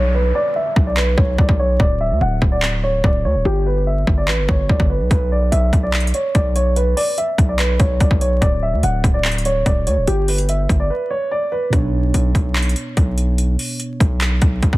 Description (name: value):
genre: hip hop, trap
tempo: 145 BPM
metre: 4/4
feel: half-time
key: B minor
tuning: A4 = 440 Hz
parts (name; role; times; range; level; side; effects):
- dark grand piano; melody; 0.0-11.7 s; G4 to F#5; -20 LUFS; right 1 dB; low-pass filter, digital delay
- distorted 808-style bass; bass; 0.0-14.8 s; D1 to D2; -18 LUFS; equal; distortion
- downlifter; sound effects; 0.0-1.8 s; none; -35 LUFS; equal; none
- trap drum kit; drums; 0.8-14.8 s; handclaps, hi-hat, kick drum; -17 LUFS; equal; overdrive
- muted felt-like synth keys; accompaniment; 11.7-14.8 s; B2 to C#5; -25 LUFS; right 2 dB; chorus, low-pass filter
room: little or no reverb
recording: dense, heavily limited modern master, vinyl crackle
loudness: -15 LUFS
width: side -18 dB against mid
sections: 0.0-14.8 A section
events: break 0.0-5.1, 10.9-11.7; filter sweep 0.0-11.7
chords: 0.0 Bmadd9; 1.8 Dmaj7(no3); 3.5 G; 5.1 Bmadd9; 8.4 Dmaj7(no3); 10.1 G; 11.7 Bmadd9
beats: | 0.14 0.56 0.97 1.38 | 1.80 2.21 2.62 3.04 | 3.45 3.87 4.28 4.69 | 5.11 5.52 5.93 6.35 | 6.76 7.18 7.59 8.00 | 8.42 8.83 9.25 9.66 | 10.07 10.49 10.90 11.31 | 11.73 12.14 12.56 12.97 | 13.38 13.80 14.21 14.62